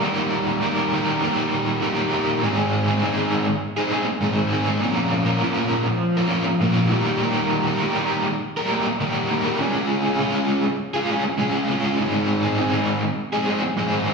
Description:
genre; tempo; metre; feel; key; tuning
rock; 100 BPM; 4/4; straight; unclear; A4 = 439 Hz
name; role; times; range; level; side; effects
overdriven semi-hollow guitar; solo; 0.0-14.1 s; Ab2 to Bb4; -19 LUFS; equal; tremolo, slapback echo
room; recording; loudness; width
wet club ambience, RT60 0.5 s; live gig heard through the venue's PA, recital hall reverb, studio ambience; -19 LUFS; side -4 dB against mid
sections
0.0-2.4 A section; 2.4-14.1 B section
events
none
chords
0.0 Eb; 2.4 Ab; 4.8 Bbm; 6.9 Eb; 9.6 Db; 12.0 Ab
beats
| 0.04 0.64 1.24 1.84 | 2.44 3.03 3.63 4.23 | 4.83 5.42 6.02 6.62 | 7.22 7.81 8.41 9.01 | 9.60 10.20 10.80 11.39 | 11.99 12.59 13.19 13.78

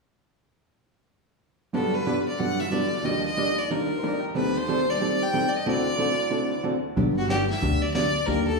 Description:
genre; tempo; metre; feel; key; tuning
country, western swing; 184 BPM; 4/4; swing 64% on 8ths; G major; A4 = 437 Hz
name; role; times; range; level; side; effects
clear fiddle; melody; 1.7-8.6 s; F#4 to G5; -27 LUFS; equal; none
hollow-body jazz guitar; accompaniment; 1.7-8.5 s; G2 to A4; -26 LUFS; right 2 dB; none
tack piano; accompaniment; 1.7-8.6 s; D2 to Bb5; -31 LUFS; left 4 dB; none
upright bass; bass; 7.0-8.6 s; G1 to Eb2; -26 LUFS; left 1 dB; none
vintage brush drum kit; drums; 7.0-8.6 s; brushed snare drum, hi-hat, kick drum, snare drum; -33 LUFS; left 1 dB; none
room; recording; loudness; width
wet large studio reverb, RT60 1.1 s; band playing live in one room, studio reverb; -22 LUFS; side -2 dB against mid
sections
1.7-7.0 A section; 7.0-8.6 B section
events
none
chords
1.7 Gmaj7; 3.0 Ebmaj7; 4.4 Cm6/Eb; 5.7 D7; 7.0 Gmaj7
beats
| 1.74 2.07 2.39 2.72 | 3.05 3.38 3.70 4.03 | 4.36 4.68 5.01 5.33 | 5.66 5.99 6.32 6.64 | 6.97 7.29 7.62 7.95 | 8.27

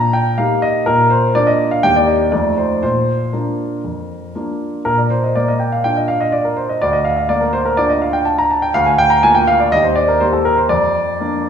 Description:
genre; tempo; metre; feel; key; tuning
classical-period piano sonatina; 123 BPM; 4/4; rubato; Bb major; A4 = 440 Hz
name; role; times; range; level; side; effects
warm grand piano; solo; 0.0-11.5 s; D2 to Bb5; -13 LUFS; equal; none
room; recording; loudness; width
wet recital hall reverb, RT60 1.4 s; recorded in a church or concert hall; -13 LUFS; side -8 dB against mid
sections
0.0-4.9 A section; 4.9-11.5 B section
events
none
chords
0.0 Eb/Bb; 0.9 Bb; 1.8 Eb; 2.3 F7; 2.8 Bb; 6.8 Bb/D; 9.7 Eb; 10.7 Bb/F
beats
0.39 | 0.87 1.35 1.83 2.33 | 2.83 3.34 3.84 4.35 | 4.85 5.35 5.84 6.33 | 6.81 7.29 7.78 8.26 | 8.74 9.23 9.71 10.21 | 10.71 11.21

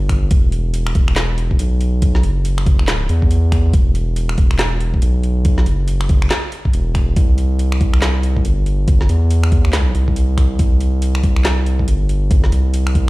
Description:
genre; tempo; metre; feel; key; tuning
deep dubstep; 140 BPM; 4/4; swing 61% on 16ths, half-time; E minor; A4 = 440 Hz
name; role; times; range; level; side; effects
saturated sub bass; bass; 0.0-13.1 s; E1 to E2; -15 LUFS; equal; none
electronic kick drum; drums; 0.1-13.1 s; none; -14 LUFS; equal; overdrive
garage drum kit; drums; 0.1-13.1 s; finger snaps, handclaps, hi-hat, snare drum; -24 LUFS; equal; overdrive
room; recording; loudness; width
little or no reverb; played on a big sound system in a bare room, stone room reverb; -13 LUFS; side -20 dB against mid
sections
0.0-13.1 A section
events
none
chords
none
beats
| 0.31 0.74 1.17 1.59 | 2.02 2.45 2.88 3.31 | 3.74 4.17 4.59 5.02 | 5.45 5.88 6.31 6.74 | 7.17 7.59 8.02 8.45 | 8.88 9.31 9.74 10.16 | 10.59 11.02 11.45 11.88 | 12.31 12.74

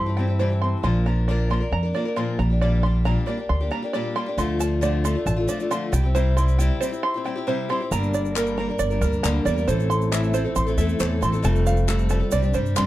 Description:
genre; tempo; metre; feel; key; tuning
indie folk with a building arrangement; 136 BPM; 4/4; straight; unclear; A4 = 438 Hz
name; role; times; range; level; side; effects
fingerpicked acoustic archtop guitar; accompaniment; 0.0-0.8 s; E3 to A4; -30 LUFS; left 2 dB; none
picked old ladder-braced acoustic guitar; accompaniment; 0.0-12.9 s; F2 to Bb4; -26 LUFS; left 2 dB; none
open-back banjo; arpeggios; 0.0-12.9 s; A4 to C6; -28 LUFS; right 3 dB; none
upright bass; bass; 0.0-12.9 s; F1 to G2; -22 LUFS; equal; none
tube shaker; percussion; 4.4-12.9 s; none; -38 LUFS; right 9 dB; none
mellow tonewheel organ; sustained chords; 7.9-12.9 s; C3 to Bb4; -31 LUFS; right 3 dB; slow rotary speaker, chorus vibrato
group handclap; percussion; 8.4-12.9 s; none; -30 LUFS; left 6 dB; none
room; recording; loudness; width
little or no reverb; dark, warm production; -20 LUFS; side -15 dB against mid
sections
0.8-7.9 A section; 7.9-12.9 B section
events
break 7.0-7.9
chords
0.0 C; 0.8 Bb; 2.4 Gm/Bb; 4.4 Dm; 5.9 C; 7.9 Gm; 9.7 Am; 11.4 Fadd9; 12.3 Csus2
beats
0.40 | 0.84 1.29 1.73 2.17 | 2.62 3.06 3.50 3.94 | 4.38 4.83 5.27 5.71 | 6.15 6.59 7.04 7.48 | 7.92 8.36 8.80 9.24 | 9.68 10.12 10.56 11.01 | 11.45 11.89 12.33 12.77

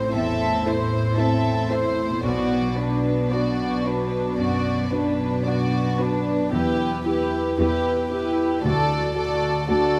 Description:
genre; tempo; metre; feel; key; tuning
cinematic; 57 BPM; 4/4; rubato; unclear; A4 = 439 Hz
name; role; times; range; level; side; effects
warm symphonic violin section; melody; 0.0-10.0 s; B4 to E5; -31 LUFS; equal; none
warm symphonic violin section; second line; 0.0-10.0 s; D4 to C5; -30 LUFS; equal; none
dark grand piano; accompaniment; 0.0-10.0 s; A1 to A4; -29 LUFS; equal; none
dark symphonic viola section; accompaniment; 0.0-10.0 s; B3 to F#4; -31 LUFS; equal; none
concert harp; arpeggios; 0.0-10.0 s; A2 to B4; -34 LUFS; equal; none
warm symphonic cello section; bass; 0.0-10.0 s; D2 to B2; -28 LUFS; equal; none
room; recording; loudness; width
moderate recital hall reverb, RT60 1.7 s; dark, warm production; -23 LUFS; mono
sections
0.0-10.0 A section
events
none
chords
0.0 Am; 2.2 Bm; 6.5 Em; 8.6 D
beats
0.15 1.19 | 2.24 3.31 4.38 5.46 | 6.54 7.59 8.64 9.69

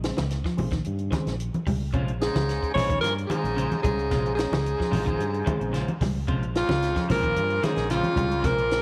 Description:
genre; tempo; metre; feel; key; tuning
afrobeat; 111 BPM; 4/4; straight; Bb dorian; A4 = 440 Hz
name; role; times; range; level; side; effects
percussive tonewheel organ; accompaniment; 0.0-8.8 s; Db3 to Db4; -40 LUFS; equal; none
fingered electric bass; bass; 0.0-8.8 s; Bb1 to G2; -32 LUFS; equal; none
compact cocktail drum kit; drums; 0.0-8.8 s; hi-hat, kick drum, snare drum; -34 LUFS; equal; none
electric guitar at the edge of break-up; arpeggios; 0.2-8.6 s; C3 to G3; -34 LUFS; equal; none
congas; percussion; 0.2-8.3 s; none; -32 LUFS; equal; none
clean electric guitar; stabs; 1.9-8.7 s; Ab3 to C5; -39 LUFS; equal; none
bright alto saxophone; melody; 2.2-8.8 s; F4 to Db5; -29 LUFS; equal; slapback echo
raspy baritone saxophone; second line; 2.2-8.8 s; F2 to Db3; -36 LUFS; equal; none
trombone with bucket mute; second line; 2.2-8.8 s; Db3 to Ab3; -40 LUFS; equal; none
room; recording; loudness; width
light reverb; none; -25 LUFS; mono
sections
0.0-8.8 A section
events
none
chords
0.0 Bbm9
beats
0.31 0.85 1.40 | 1.94 2.48 3.02 3.56 | 4.11 4.65 5.19 5.73 | 6.28 6.82 7.36 7.90 | 8.45

